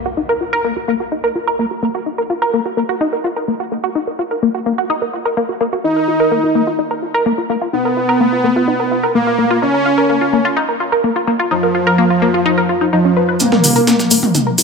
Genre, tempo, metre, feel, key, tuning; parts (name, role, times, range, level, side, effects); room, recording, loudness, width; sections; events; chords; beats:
melodic techno; 127 BPM; 4/4; straight; Eb minor; A4 = 445 Hz
tight sequenced synth; arpeggios; 0.1-14.6 s; Bb3 to Cb5; -16 LUFS; left 1 dB; chorus, dub echo
soft supersaw; melody; 5.8-14.3 s; F3 to Eb4; -15 LUFS; right 1 dB; ping-pong delay
breakbeat sampler-style drum kit; drums; 13.4-14.6 s; hi-hat, snare drum; -22 LUFS; right 2 dB; high-pass filter on snare, high-pass filter on hats
techno drum kit; drums; 13.4-14.6 s; hi-hat, toms; -14 LUFS; equal
cabasa; percussion; 13.4-14.6 s; -18 LUFS; equal
dark detuned saw bass; bass; 13.6-14.6 s; Eb1; -22 LUFS; left 1 dB; high-pass filter
moderate lush hall reverb, RT60 1.9 s; -13 LUFS; side -4 dB against mid
0.0-13.4 A section; 13.4-14.6 B section
filter sweep on synth arpeggio sound 0.0-13.4, 13.4-14.6; build-up 13.4-14.6; drum fill 13.4-14.6
0.0 Ebm (rootless); 5.8 Db; 13.4 Eb5
| 0.17 0.65 1.12 1.59 | 2.06 2.54 3.01 3.48 | 3.95 4.42 4.90 5.37 | 5.84 6.32 6.79 7.26 | 7.73 8.20 8.68 9.15 | 9.62 10.09 10.57 11.04 | 11.51 11.98 12.46 12.93 | 13.40 13.87 14.35